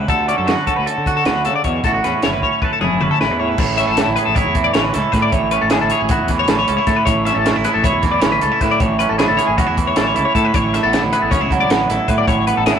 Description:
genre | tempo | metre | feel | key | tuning
math rock and midwest emo | 311 BPM (eighths) | 9/8 | straight | unclear | A4 = 440 Hz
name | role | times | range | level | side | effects
twangy electric guitar | accompaniment | 0.0-12.8 s | A2 to A4 | -18 LUFS | right 5 dB | spring reverb
twelve-string electric guitar | arpeggios | 0.0-12.8 s | F#4 to E5 | -19 LUFS | left 8 dB | spring reverb
fuzz fingered electric bass | bass | 0.0-12.7 s | F#1 to D3 | -23 LUFS | left 1 dB | overdrive
compact cocktail drum kit | drums | 0.1-12.8 s | crash cymbal, hi-hat, kick drum, snare drum, toms | -20 LUFS | equal | none
room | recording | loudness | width
moderate studio reverb, RT60 0.6 s | rough rehearsal-room recording | -14 LUFS | side -8 dB against mid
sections
0.0-3.6 A section; 3.6-12.8 B section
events
drum fill 2.4-3.6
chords
0.1 Dmaj7; 1.8 A69; 3.6 F#m11/A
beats
| 0.08 0.28 0.47 0.67 0.86 1.06 1.25 1.45 1.65 | 1.84 2.04 2.23 2.42 2.62 2.81 3.01 3.20 3.40 | 3.59 3.79 3.98 4.17 4.37 4.56 4.76 4.95 5.14 | 5.34 5.53 5.72 5.92 6.11 6.30 6.50 6.69 6.88 | 7.08 7.27 7.46 7.65 7.85 8.04 8.23 8.43 8.62 | 8.81 9.00 9.20 9.39 9.58 9.77 9.97 10.16 10.35 | 10.54 10.74 10.93 11.12 11.31 11.51 11.70 11.89 12.08 | 12.28 12.47 12.66

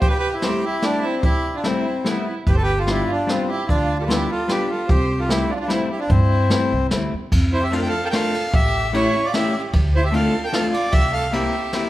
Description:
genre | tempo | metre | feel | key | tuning
musette waltz | 149 BPM | 3/4 | straight | C major, F major from 7.3 s | A4 = 440 Hz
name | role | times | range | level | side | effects
accordion | melody | 0.0-11.9 s | B3 to G5 | -23 LUFS | left 1 dB | none
dark violin | second line | 0.0-11.9 s | E4 to C5 | -27 LUFS | right 3 dB | none
jazz brush drum kit | drums | 0.0-11.8 s | crash cymbal, hi-hat, kick drum, ride cymbal, snare drum | -22 LUFS | equal | none
hollow-body jazz guitar | accompaniment | 0.4-11.9 s | G3 to G4 | -25 LUFS | left 2 dB | none
upright bass | bass | 2.5-11.5 s | G1 to G2 | -22 LUFS | equal | none
room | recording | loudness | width
moderate recital hall reverb, RT60 1.7 s | recorded in a church or concert hall | -17 LUFS | side -15 dB against mid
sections
0.0-7.3 A section; 7.3-11.9 B section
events
none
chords
0.0 Am7; 2.5 G7; 4.9 C6; 7.3 F6; 8.5 A7; 9.7 Dm7; 10.9 C7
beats
| 0.02 0.43 0.83 | 1.24 1.65 2.06 | 2.47 2.88 3.29 | 3.69 4.09 4.49 | 4.89 5.29 5.70 | 6.10 6.51 6.92 | 7.32 7.73 8.13 | 8.54 8.94 9.33 | 9.73 10.13 10.53 | 10.93 11.33 11.73

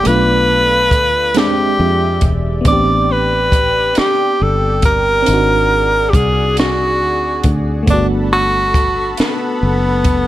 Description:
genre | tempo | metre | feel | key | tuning
slow six-eight R&B | 46 BPM (dotted quarters) | 6/8 | straight | unclear | A4 = 440 Hz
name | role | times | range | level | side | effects
warm tenor saxophone | melody | 0.0-10.3 s | B3 to D5 | -14 LUFS | equal | none
FM electric piano with auto-pan | accompaniment | 0.0-10.3 s | G#3 to G4 | -21 LUFS | right 1 dB | none
warm analog pad | sustained chords | 0.0-10.3 s | G#3 to B5 | -27 LUFS | left 1 dB | chorus
fingered electric bass | bass | 0.1-10.3 s | E1 to F2 | -18 LUFS | equal | none
compact cocktail drum kit | drums | 0.1-10.3 s | hi-hat, kick drum, snare drum | -16 LUFS | equal | none
room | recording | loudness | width
small room ambience | none | -12 LUFS | side -14 dB against mid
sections
0.0-10.3 A section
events
none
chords
0.0 Bm7b5; 1.4 E7alt; 2.7 Am11; 5.3 G#7#11; 7.9 Gmaj9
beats
| 0.05 1.35 | 2.66 3.96 | 5.27 6.57 | 7.88 9.18

